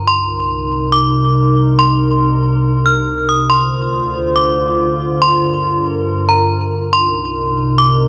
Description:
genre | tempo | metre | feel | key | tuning
hip hop | 140 BPM | 4/4 | half-time | C minor | A4 = 437 Hz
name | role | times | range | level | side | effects
warbly tape-like pad | sustained chords | 0.0-8.1 s | C2 to C5 | -17 LUFS | equal | chorus, built-in reverb
metallic FM bell | melody | 0.1-8.1 s | Bb5 to F6 | -17 LUFS | equal | chorus, low-pass filter, tape echo
room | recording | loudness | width
light reverb, digital ambience | worn, warbling old tape, cassette tape, warbly pitch drift | -14 LUFS | mono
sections
0.0-6.9 A section; 6.9-8.1 B section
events
none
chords
0.1 Cm7; 3.5 Dm7; 5.2 Gm7; 6.9 Cm7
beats
| 0.07 0.50 0.93 1.36 | 1.79 2.22 2.64 3.07 | 3.50 3.93 4.36 4.79 | 5.22 5.64 6.07 6.50 | 6.93 7.36 7.79

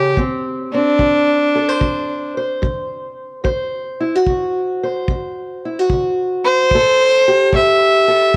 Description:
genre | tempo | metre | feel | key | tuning
acoustic country blues, solo or duo | 73 BPM | 4/4 | swing 68% on 8ths | unclear | A4 = 437 Hz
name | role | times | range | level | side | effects
warm fiddle | melody | 0.0-8.4 s | D4 to E5 | -16 LUFS | equal | none
fingerpicked steel-string acoustic guitar | accompaniment | 0.0-8.4 s | A2 to C5 | -21 LUFS | equal | none
kick drum | drums | 0.2-8.4 s | none | -23 LUFS | equal | none
room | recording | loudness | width
moderate echo chamber reverb, RT60 2.1 s | none | -16 LUFS | mono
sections
0.0-8.4 A section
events
fiddle solo 0.0-8.4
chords
0.2 D7; 6.7 A7(no3)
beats
| 0.17 0.99 1.81 2.62 | 3.44 4.26 5.08 5.90 | 6.71 7.53 8.35

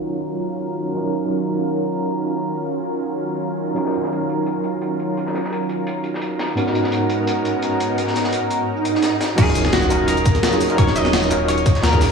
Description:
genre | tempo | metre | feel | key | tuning
liquid drum and bass | 171 BPM | 4/4 | straight | Eb minor | A4 = 441 Hz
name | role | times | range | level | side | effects
overdriven tine electric piano | accompaniment | 0.0-12.1 s | Ab2 to Bb4 | -23 LUFS | right 2 dB | medium tremolo, low-pass filter, tape echo
lush unison pad | sustained chords | 0.0-12.1 s | Ab2 to Eb5 | -23 LUFS | equal | chorus, sidechain pumping
breakbeat sampler-style drum kit | drums | 0.0-12.1 s | cabasa, crash cymbal, hi-hat, snare drum | -23 LUFS | left 1 dB | low-pass filter on hats, low-pass filter on perc, low-pass filter on snare, low-pass filter on cymbals, low-pass filter on room
crunchy breakbeat drum kit | drums | 3.8-12.1 s | hi-hat, snare drum | -29 LUFS | equal | high-pass filter on hats, high-pass filter on snare, high-pass filter on room
swell and impact | sound effects | 8.8-10.8 s | none | -22 LUFS | right 2 dB | none
clean electric guitar | melody | 9.4-12.1 s | Gb4 to Eb5 | -22 LUFS | left 2 dB | digital delay
sub bass with octave | bass | 9.4-12.1 s | Eb1 to Eb2 | -23 LUFS | equal | none
electronic kick drum | drums | 9.4-12.0 s | none | -16 LUFS | equal | overdrive
room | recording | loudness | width
light reverb | played on a big sound system in a bare room, large studio reverb, low-pass filter | -18 LUFS | side -5 dB against mid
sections
0.0-9.4 A section; 9.4-12.1 B section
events
filter sweep on tine electric piano 0.0-9.4; filter sweep 0.0-9.4; swell 8.8-9.4; drop 9.4-12.1; impact 9.4-10.8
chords
0.0 Ebm9; 6.6 Abm11; 9.4 Ebm9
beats
0.26 0.61 | 0.96 1.31 1.66 2.01 | 2.36 2.71 3.06 3.42 | 3.77 4.12 4.47 4.82 | 5.17 5.52 5.87 6.22 | 6.57 6.92 7.27 7.62 | 7.98 8.33 8.68 9.03 | 9.38 9.73 10.08 10.43 | 10.78 11.13 11.48 11.84

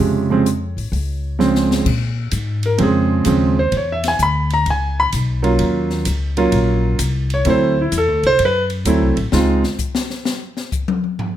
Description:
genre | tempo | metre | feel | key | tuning
jazz piano trio | 129 BPM | 4/4 | swing 67% on 8ths | Bb minor | A4 = 444 Hz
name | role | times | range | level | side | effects
warm concert grand piano | melody | 0.0-9.6 s | C3 to B5 | -16 LUFS | right 2 dB | none
upright bass | bass | 0.0-9.6 s | A1 to Bb2 | -20 LUFS | left 1 dB | none
open jazz drum kit | drums | 0.5-11.3 s | crash cymbal, hi-hat, kick drum, ride cymbal, snare drum, toms | -25 LUFS | left 3 dB | none
room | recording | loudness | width
light reverb | none | -15 LUFS | side -11 dB against mid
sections
0.0-1.9 A section; 1.9-11.4 B section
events
drum fill 1.4-1.9; grand piano solo 1.9-11.4; drum solo 9.3-11.4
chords
0.0 Bbm7 (rootless); 1.9 Bbm7; 3.7 E5; 5.6 Ebm9; 7.5 D9; 9.3 N.C.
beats
| 0.00 0.47 0.93 1.40 | 1.86 2.33 2.80 3.26 | 3.73 4.20 4.66 5.13 | 5.60 6.06 6.53 7.00 | 7.46 7.93 8.39 8.86 | 9.33 9.79 10.26 10.72 | 11.19

